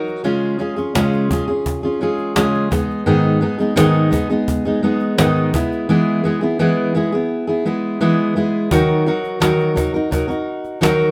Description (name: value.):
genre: acoustic pop.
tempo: 85 BPM.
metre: 4/4.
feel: straight.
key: unclear.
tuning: A4 = 440 Hz.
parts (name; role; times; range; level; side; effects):
fingerpicked steel-string acoustic guitar; accompaniment; 0.0-11.1 s; G#2 to A#4; -18 LUFS; equal; none.
cajon; drums; 0.1-11.1 s; none; -24 LUFS; equal; none.
room: moderate studio reverb, RT60 0.8 s.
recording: none.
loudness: -18 LUFS.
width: mono.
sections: 0.0-8.7 A section; 8.7-11.1 B section.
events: none.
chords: 0.2 C#; 2.7 G#m; 5.5 E; 8.7 D#m.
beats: | 0.25 0.95 1.66 2.37 | 3.07 3.78 4.48 5.19 | 5.89 6.60 7.30 8.01 | 8.71 9.42 10.12 10.82.